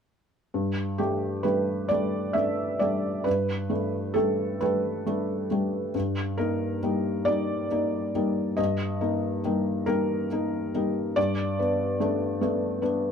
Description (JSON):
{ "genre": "neoclassical minimalist piano", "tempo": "45 BPM (dotted quarters)", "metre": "6/8", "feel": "uneven beats, rubato", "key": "unclear", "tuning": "A4 = 440 Hz", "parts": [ { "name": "felt-muted upright piano", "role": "solo", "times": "0.5-13.1 s", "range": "G2 to E5", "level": "-24 LUFS", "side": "equal", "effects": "none" } ], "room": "little or no reverb", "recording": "close, detailed microphones", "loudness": "-24 LUFS", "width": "side -7 dB against mid", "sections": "0.5-13.1 A section", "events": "none", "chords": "0.5 Gadd9; 5.9 Eb/G; 11.2 Gadd9" }